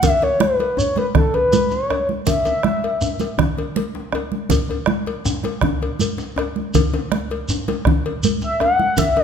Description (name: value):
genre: west african traditional, West African drum ensemble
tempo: 107 BPM (dotted quarters)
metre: 12/8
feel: straight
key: unclear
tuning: A4 = 442 Hz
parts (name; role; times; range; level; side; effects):
- mellow horn-like synth lead; melody; 0.0-3.3, 8.4-9.2 s; A4 to F#5; -18 LUFS; left 1 dB; chorus
- bombo; percussion; 0.0-9.2 s; none; -24 LUFS; right 2 dB; none
- congas; percussion; 0.0-9.1 s; none; -23 LUFS; right 4 dB; none
- cowbell; percussion; 0.0-9.2 s; none; -28 LUFS; left 7 dB; none
- djembe; percussion; 0.0-9.2 s; none; -26 LUFS; left 4 dB; none
- shekere; percussion; 0.0-9.1 s; none; -27 LUFS; right 2 dB; none
room: wet recital hall reverb, RT60 1.8 s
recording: recorded in a church or concert hall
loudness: -17 LUFS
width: side -7 dB against mid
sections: 0.0-9.2 A section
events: none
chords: none